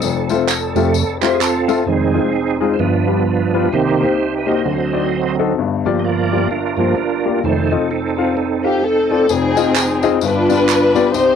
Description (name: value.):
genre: uptempo gospel.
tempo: 129 BPM.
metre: 4/4.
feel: swing 60% on 8ths.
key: unclear.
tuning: A4 = 440 Hz.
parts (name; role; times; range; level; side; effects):
warm upright piano; accompaniment; 0.0-11.4 s; F1 to A5; -18 LUFS; left 9 dB; none.
bright tonewheel organ; sustained chords; 0.0-9.3 s; F2 to Eb5; -17 LUFS; right 6 dB; overdrive, chorus vibrato, slow rotary speaker.
tambourine and handclaps; percussion; 0.0-1.8, 9.3-11.3 s; none; -22 LUFS; right 4 dB; none.
warm studio string section; melody; 8.6-11.4 s; C4 to C5; -14 LUFS; left 1 dB; none.
room: moderate studio reverb, RT60 0.6 s.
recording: home recording on cassette.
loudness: -14 LUFS.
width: side -7 dB against mid.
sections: 0.0-1.9 A section; 1.9-9.3 B section; 9.3-11.4 C section.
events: tonewheel organ solo 0.0-1.9, 1.9-9.3; upright piano fill 1.2-1.9.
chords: 0.0 F; 1.9 Fm7; 2.8 G7; 3.7 Cm7; 4.7 D7b9; 5.6 Gm7; 7.4 F7; 9.3 Fm7; 10.2 G7.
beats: | 0.02 0.48 0.95 1.41 | 1.87 2.34 2.80 3.27 | 3.73 4.19 4.66 5.12 | 5.58 6.05 6.51 6.98 | 7.44 7.90 8.37 8.83 | 9.29 9.75 10.21 10.68 | 11.14.